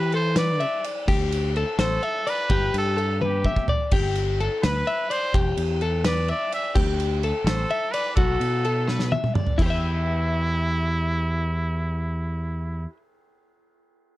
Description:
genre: math rock and midwest emo.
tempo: 84 BPM (dotted quarters).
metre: 6/8.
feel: straight.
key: E minor.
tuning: A4 = 438 Hz.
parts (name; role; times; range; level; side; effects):
bright trumpet; melody; 0.0-12.9 s; E4 to E5; -28 LUFS; right 2 dB; slapback echo.
twelve-string electric guitar; arpeggios; 0.0-13.0 s; E4 to E5; -27 LUFS; left 4 dB; none.
growling fingered electric bass; bass; 0.0-12.9 s; E1 to E3; -25 LUFS; equal; overdrive.
loose indie drum kit; drums; 0.1-9.7 s; crash cymbal, kick drum, ride cymbal, snare drum, toms; -26 LUFS; equal; none.
room: little or no reverb.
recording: dark, warm production.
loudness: -21 LUFS.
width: side -16 dB against mid.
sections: 0.0-9.6 A section; 9.6-12.4 B section.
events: drum fill 3.2-3.9, 8.9-9.6.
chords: 0.0 Em7; 1.1 D7sus4; 2.5 Gadd9; 5.3 Em7; 6.8 D7sus4; 8.2 Bm7; 9.6 Em.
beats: 0.37 | 1.08 1.79 | 2.50 3.21 | 3.92 4.63 | 5.34 6.05 | 6.76 7.47 | 8.18 8.89 | 9.60 10.31 | 11.02 11.73.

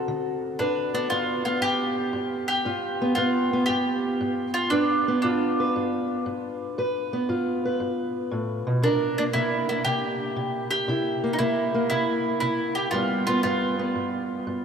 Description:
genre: acoustic country blues, solo or duo.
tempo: 117 BPM.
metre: 4/4.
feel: swing 68% on 8ths.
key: G mixolydian.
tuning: A4 = 443 Hz.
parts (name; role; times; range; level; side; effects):
fingerpicked steel-string acoustic guitar; accompaniment; 0.0-14.6 s; G2 to B4; -25 LUFS; equal; none.
bowl-back mandolin; melody; 0.6-14.4 s; D4 to G4; -26 LUFS; right 1 dB; none.
room: wet cathedral reverb, RT60 5.2 s.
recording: in a vast, echoing space.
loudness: -23 LUFS.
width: side -7 dB against mid.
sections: 0.6-14.6 A section.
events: none.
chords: 0.0 D7; 0.6 G7; 8.8 C7; 12.9 G7.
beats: 0.07 | 0.58 1.10 1.62 2.13 | 2.65 3.16 3.68 4.20 | 4.71 5.23 5.74 6.25 | 6.77 7.28 7.80 8.31 | 8.82 9.34 9.85 10.36 | 10.87 11.38 11.90 12.41 | 12.92 13.43 13.94 14.46.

